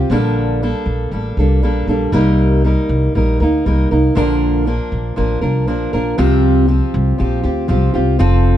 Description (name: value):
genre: acoustic pop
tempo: 119 BPM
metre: 4/4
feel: swing 55% on 16ths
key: unclear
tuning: A4 = 441 Hz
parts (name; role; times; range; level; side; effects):
- fingerpicked steel-string acoustic guitar; accompaniment; 0.0-8.6 s; Bb2 to Bb4; -16 LUFS; equal; none
- upright bass; bass; 0.0-8.6 s; F1 to D2; -16 LUFS; equal; none
room: moderate small room reverb, RT60 0.5 s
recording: dark, warm production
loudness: -13 LUFS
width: side -12 dB against mid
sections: 0.0-8.6 A section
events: none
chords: 0.1 Gmadd9/Bb; 2.1 Cm7; 4.2 Bb; 6.2 Csus4